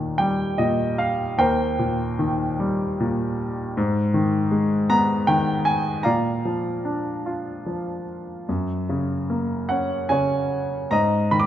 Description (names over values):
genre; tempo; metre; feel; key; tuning
classical, lyrical solo piano; 75 BPM; 3/4; rubato; unclear; A4 = 440 Hz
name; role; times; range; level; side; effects
clear grand piano; solo; 0.0-11.5 s; Eb2 to D6; -20 LUFS; equal; none
room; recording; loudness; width
moderate concert hall reverb, RT60 2.3 s; none; -20 LUFS; side -11 dB against mid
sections
0.0-11.5 A section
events
none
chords
0.0 Eb; 1.4 Cm7/Eb; 3.8 Abm; 6.1 Bb; 8.5 Gbadd9; 10.9 Abm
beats
0.60 | 1.39 2.20 3.00 | 3.77 4.52 5.28 | 6.05 6.85 7.66 | 8.48 9.30 10.10 | 10.91